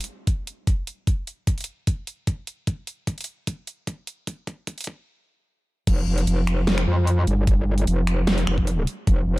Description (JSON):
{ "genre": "heavy wobble dubstep", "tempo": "150 BPM", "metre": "4/4", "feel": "half-time", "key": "unclear", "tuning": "A4 = 443 Hz", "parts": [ { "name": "dubstep drum kit", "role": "drums", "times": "0.0-9.2 s", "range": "crash cymbal, finger snaps, hi-hat, snare drum", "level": "-29 LUFS", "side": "equal", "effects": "none" }, { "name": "electronic kick drum", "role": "drums", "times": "0.3-9.2 s", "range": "none", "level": "-22 LUFS", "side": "equal", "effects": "none" }, { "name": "metallic wobble bass", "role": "bass", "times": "5.9-9.4 s", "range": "F1 to F2", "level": "-20 LUFS", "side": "equal", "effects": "chorus, overdrive" } ], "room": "digital ambience", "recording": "dark, warm production, high-pass filter", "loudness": "-21 LUFS", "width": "side -20 dB against mid", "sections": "0.0-5.9 A section; 5.9-9.4 B section", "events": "build-up 0.0-5.9; filter sweep 0.0-5.9; drum fill 2.7-5.1; stop 5.1-5.9; drop 5.9-9.4", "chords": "none" }